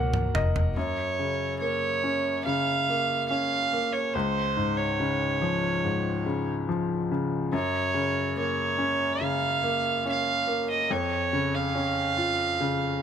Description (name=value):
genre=pop ballad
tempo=71 BPM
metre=4/4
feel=straight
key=unclear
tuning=A4 = 439 Hz
part: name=clear upright piano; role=accompaniment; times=0.0-13.0 s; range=Db2 to Bb5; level=-28 LUFS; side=left 2 dB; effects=none
part: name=warm studio string section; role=sustained chords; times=0.0-0.7 s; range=Eb3 to Bb3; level=-42 LUFS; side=equal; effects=none
part: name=vintage muted fingered electric bass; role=bass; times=0.0-0.7 s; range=F1 to Db2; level=-27 LUFS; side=equal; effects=none
part: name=toms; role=drums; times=0.1-0.8 s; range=none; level=-28 LUFS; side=right 1 dB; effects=none
part: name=warm violin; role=melody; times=0.8-13.0 s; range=C5 to F5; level=-27 LUFS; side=right 4 dB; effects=digital delay
room=moderate booth ambience, RT60 0.2 s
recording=none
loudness=-24 LUFS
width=side -8 dB against mid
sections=0.8-13.0 A section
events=drum fill 0.0-0.8; upright piano fill 0.0-0.8, 12.6-13.0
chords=0.0 Ebm; 0.8 Gbmaj7; 4.1 Db; 7.5 Gbmaj7; 10.9 Db/F